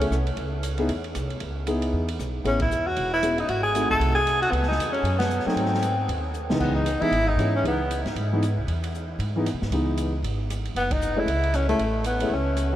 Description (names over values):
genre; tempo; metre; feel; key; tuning
jazz, small-group swing and bop; 231 BPM; 4/4; swing 59% on 8ths; C# minor; A4 = 439 Hz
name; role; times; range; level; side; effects
warm tenor saxophone; melody; 0.0-0.2, 2.5-8.0, 10.8-12.7 s; A3 to A4; -26 LUFS; equal; none
warm concert grand piano; accompaniment; 0.0-12.8 s; C#2 to G#4; -28 LUFS; left 1 dB; none
upright bass; bass; 0.0-12.8 s; E1 to B2; -27 LUFS; equal; none
open jazz drum kit; drums; 0.0-12.6 s; crash cymbal, hi-hat, kick drum, ride cymbal, rim click, snare drum; -34 LUFS; right 1 dB; none
room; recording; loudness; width
wet huge ambient reverb, RT60 8.7 s; in a vast, echoing space; -22 LUFS; side -12 dB against mid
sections
0.0-6.6 A section; 6.6-12.8 A section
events
band accent 2.6, 5.2, 10.9; drum fill 6.3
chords
0.4 C#m7; 2.5 Amaj7; 3.5 G#7b9; 4.5 C#m; 5.0 F#m; 5.6 G#7b9; 6.6 C#m7; 10.8 F#m7